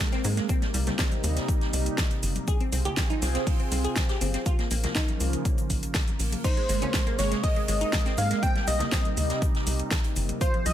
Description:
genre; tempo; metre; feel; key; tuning
progressive house; 121 BPM; 4/4; straight; unclear; A4 = 440 Hz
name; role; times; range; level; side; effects
lush unison pad; sustained chords; 0.0-10.7 s; C3 to Ab4; -33 LUFS; right 1 dB; chorus, phaser, sidechain pumping
glassy wavetable pluck; arpeggios; 0.0-10.7 s; F3 to Ab4; -33 LUFS; equal; chorus, sidechain pumping, dub echo
deep house drum kit; drums; 0.0-10.7 s; crash cymbal, hi-hat, shaker, snare drum; -32 LUFS; equal; overdrive
electronic kick drum; drums; 0.0-10.5 s; none; -26 LUFS; equal; none
swinging big-band drum kit; drums; 0.1-10.7 s; hi-hat, shaker, snare drum; -38 LUFS; right 1 dB; high-pass filter on hats, high-pass filter on snare, high-pass filter on perc, high-pass filter on room
tight sequencer bass; bass; 0.2-10.7 s; G1 to Ab2; -27 LUFS; equal; sidechain pumping
congas; percussion; 0.2-10.4 s; none; -39 LUFS; left 1 dB; sidechain pumping on perc
plucky unison lead; melody; 6.4-10.7 s; C5 to G5; -30 LUFS; equal; digital delay
room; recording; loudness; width
small room ambience; none; -24 LUFS; side -11 dB against mid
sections
0.0-10.7 A section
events
none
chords
0.5 Cm7; 2.5 Fm/C; 4.5 Bbm; 6.4 Abadd9; 8.4 Cm7

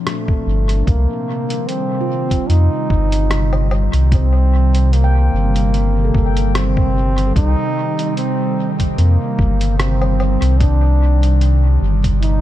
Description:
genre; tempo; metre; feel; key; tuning
ambient dub; 74 BPM; 4/4; swing 55% on 16ths; C dorian; A4 = 440 Hz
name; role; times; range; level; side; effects
airy breathy pad; sustained chords; 0.0-12.4 s; Bb2 to D4; -22 LUFS; right 2 dB; chorus
warm trombone; melody; 0.1-12.4 s; A3 to Eb4; -22 LUFS; equal; dub echo
lo-fi sampler-style drum kit; drums; 0.1-12.4 s; hi-hat, rim click, woodblock; -28 LUFS; equal; dub echo
electronic kick drum; drums; 0.3-12.2 s; none; -17 LUFS; equal; none
warm sub bass; bass; 0.5-12.4 s; G1 to F2; -14 LUFS; equal; none
handpan; arpeggios; 2.0-9.6 s; G3 to G5; -30 LUFS; right 1 dB; ping-pong delay
room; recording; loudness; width
light reverb; none; -13 LUFS; side -13 dB against mid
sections
0.9-12.4 A section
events
none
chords
0.0 Bb6; 0.9 Cm7

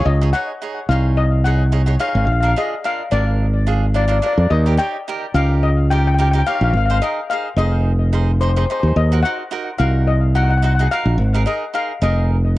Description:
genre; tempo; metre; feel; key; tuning
calypso; 108 BPM; 4/4; swing 54% on 16ths; Db major; A4 = 440 Hz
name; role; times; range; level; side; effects
steel pan; melody; 0.0-12.6 s; C5 to G5; -22 LUFS; left 5 dB; cassette tape, tape echo
cavaquinho; accompaniment; 0.0-12.4 s; D4 to Db5; -26 LUFS; right 7 dB; cassette tape
modern bright fingered electric bass; bass; 0.0-12.6 s; F1 to F2; -15 LUFS; equal; none
room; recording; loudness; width
small room ambience; home recording on cassette; -15 LUFS; side -17 dB against mid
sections
0.1-12.6 A section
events
none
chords
0.1 Dbsus2; 2.3 Bb; 4.5 Eb7; 6.7 Ab; 9.0 Ebm; 11.2 Absus2

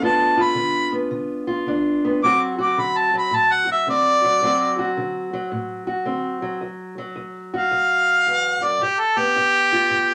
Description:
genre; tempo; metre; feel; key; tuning
acoustic country blues, solo or duo; 109 BPM; 4/4; swing 65% on 8ths; D mixolydian; A4 = 440 Hz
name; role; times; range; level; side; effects
clear harmonica; melody; 0.0-10.1 s; G4 to D6; -20 LUFS; equal; none
fingerpicked steel-string acoustic guitar; accompaniment; 0.0-10.1 s; D2 to F#4; -26 LUFS; equal; none
room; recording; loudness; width
moderate studio ambience, RT60 0.4 s; none; -20 LUFS; mono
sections
0.0-6.6 A section; 6.6-10.1 B section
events
harmonica solo 6.6-10.1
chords
0.0 G7; 2.2 D7; 6.6 D; 8.8 G7

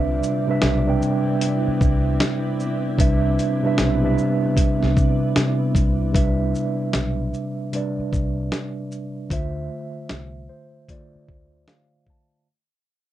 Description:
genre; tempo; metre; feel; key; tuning
lo-fi hip hop; 76 BPM; 4/4; swing 65% on 16ths; C major; A4 = 440 Hz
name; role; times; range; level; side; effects
mellow tine electric piano; accompaniment; 0.0-12.5 s; C3 to A5; -22 LUFS; right 1 dB; medium stereo tremolo, low-pass filter
granular cloud pad; sustained chords; 0.0-6.1 s; B3 to D5; -30 LUFS; right 1 dB; built-in reverb, low-pass filter
vintage muted fingered electric bass; bass; 0.0-11.7 s; B1 to C3; -24 LUFS; left 1 dB; none
dusty soul sampler-style drum kit; drums; 0.2-12.3 s; hi-hat, kick drum, shaker, snare drum; -22 LUFS; left 1 dB; none
room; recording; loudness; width
moderate small room ambience, RT60 0.5 s; cassette tape; -19 LUFS; side -13 dB against mid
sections
0.0-6.1 A section; 6.1-12.5 B section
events
fade-out 6.1-12.5; tine electric piano fill 10.1-12.5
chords
0.0 Cmaj9; 9.3 Dm7

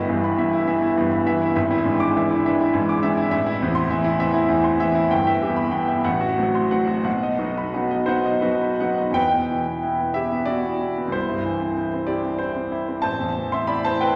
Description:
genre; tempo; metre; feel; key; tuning
classical, romantic character piece for solo piano; 52-69 BPM (dotted quarters); 6/8; rubato; E minor; A4 = 441 Hz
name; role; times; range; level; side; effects
warm concert grand piano; solo; 0.0-14.2 s; G1 to D6; -22 LUFS; equal; none
room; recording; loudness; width
wet recital hall reverb, RT60 1.6 s; none; -22 LUFS; mono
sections
0.0-9.2 A section; 9.2-14.2 B section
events
none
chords
0.0 Em/G; 1.6 E7/G#; 3.3 Am; 5.1 Em/G; 6.1 F#dim/A; 7.1 B; 9.2 Em; 11.2 C; 13.1 Am

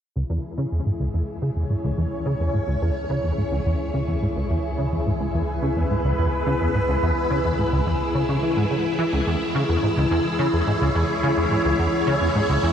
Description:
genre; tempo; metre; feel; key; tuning
ambient, sequencer-driven space music; 107 BPM; 4/4; straight; C# minor; A4 = 445 Hz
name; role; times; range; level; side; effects
string machine, full ensemble; sustained chords; 0.2-12.7 s; E4 to C#5; -24 LUFS; equal; ensemble chorus, shimmer reverb
plucky analog bass; riff; 0.2-12.7 s; C#2 to E3; -23 LUFS; equal; ensemble chorus, ping-pong delay, shimmer reverb
warm sub bass; bass; 0.2-12.7 s; C#2; -32 LUFS; equal; none
room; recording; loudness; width
moderate plate reverb, RT60 2.3 s; dreamy mix soaked in reverb; -20 LUFS; side -8 dB against mid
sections
0.2-9.1 A section; 9.1-12.7 B section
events
fade-in on sub bass 0.2-9.1; filter sweep on analog synth bass 0.2-9.1; filter sweep on string machine 0.2-9.1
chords
0.2 C#m

